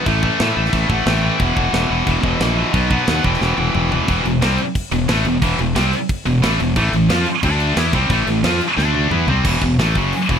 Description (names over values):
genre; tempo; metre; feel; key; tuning
heavy metal; 179 BPM; 4/4; straight; E minor; A4 = 440 Hz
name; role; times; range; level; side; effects
high-gain lead guitar; melody; 0.0-3.9 s; D#5 to G5; -27 LUFS; left 2 dB; distortion, ping-pong delay
heavy high-gain guitar; riff; 0.0-10.4 s; E2 to F4; -17 LUFS; equal; distortion
fuzz fingered electric bass; bass; 0.1-10.4 s; E1 to A2; -20 LUFS; equal; overdrive
tight metal drum kit; drums; 0.1-10.4 s; crash cymbal, hi-hat, kick drum, snare drum, toms; -23 LUFS; equal; none
room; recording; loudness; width
small room ambience; rough home demo mix; -15 LUFS; side -8 dB against mid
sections
0.0-4.1 A section; 4.1-9.5 B section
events
drum fill 3.4-4.1, 8.8-9.5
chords
0.1 A5; 1.4 E5; 2.7 B; 3.2 Em; 4.1 E5; 6.8 A5; 7.4 D5; 7.8 A5; 8.8 D5; 9.1 Cmaj7; 9.5 E5